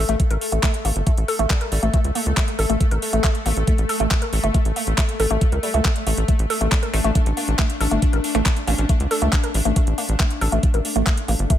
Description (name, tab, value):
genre	psychedelic trance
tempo	138 BPM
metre	4/4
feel	straight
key	unclear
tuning	A4 = 440 Hz
part	metallic wobble bass	second line	0.0-1.8, 6.9-8.9 s	G3 to C#4	-36 LUFS	left 2 dB	none
part	pulsing gated texture	sustained chords	0.0-11.6 s	A3 to A4	-27 LUFS	left 2 dB	chorus, built-in reverb, sidechain pumping
part	tight sequencer bass	bass	0.0-11.5 s	G1 to C#2	-21 LUFS	equal	none
part	woody wave-folded pluck	riff	0.1-11.5 s	G3 to Bb4	-25 LUFS	moving between left 7 dB and right 5 dB	chorus, auto-pan, sidechain pumping, dub echo
part	garage drum kit	drums	0.1-11.6 s	handclaps, hi-hat	-26 LUFS	equal	small room ambience
part	electronic kick drum	drums	0.2-11.6 s	none	-19 LUFS	equal	small room ambience
room	digital ambience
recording	none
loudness	-18 LUFS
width	side -11 dB against mid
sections	0.0-11.6 A section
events	none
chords	0.0 Gsus2 (rootless)